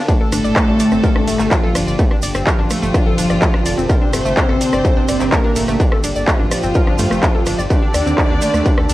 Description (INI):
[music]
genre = melodic techno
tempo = 126 BPM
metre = 4/4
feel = straight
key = unclear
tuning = A4 = 438 Hz
[part]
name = lush unison pad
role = sustained chords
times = 0.0-8.9 s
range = Bb2 to G4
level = -27 LUFS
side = equal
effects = chorus, phaser, sidechain pumping, cassette tape
[part]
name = analog pluck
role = arpeggios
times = 0.0-8.9 s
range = A3 to D5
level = -23 LUFS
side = left 1 dB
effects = chorus, sidechain pumping, cassette tape, analog delay
[part]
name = fat analog lead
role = melody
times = 0.1-8.9 s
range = F3 to D4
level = -19 LUFS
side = equal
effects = wide subtle chorus, sidechain pumping, cassette tape, tape echo
[part]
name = clear chamber violin section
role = second line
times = 0.1-8.9 s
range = F4 to D5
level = -27 LUFS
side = left 2 dB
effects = sidechain pumping, cassette tape, analog delay
[part]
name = electronic kick drum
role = drums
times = 0.1-8.8 s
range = none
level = -16 LUFS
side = equal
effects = distortion, cassette tape
[part]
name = techno drum kit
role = drums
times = 0.1-8.9 s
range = handclaps, hi-hat, ride cymbal, rim click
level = -22 LUFS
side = equal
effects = cassette tape
[part]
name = tube shaker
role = percussion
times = 0.1-8.9 s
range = none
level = -32 LUFS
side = right 9 dB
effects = none
[part]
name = round analog bass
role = bass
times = 0.3-8.9 s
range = F1 to G2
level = -23 LUFS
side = equal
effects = tube saturation, sidechain pumping
[sound]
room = light reverb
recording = home recording on cassette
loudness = -13 LUFS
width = side -16 dB against mid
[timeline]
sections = 0.0-8.9 A section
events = none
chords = 0.1 Gm; 7.7 Eb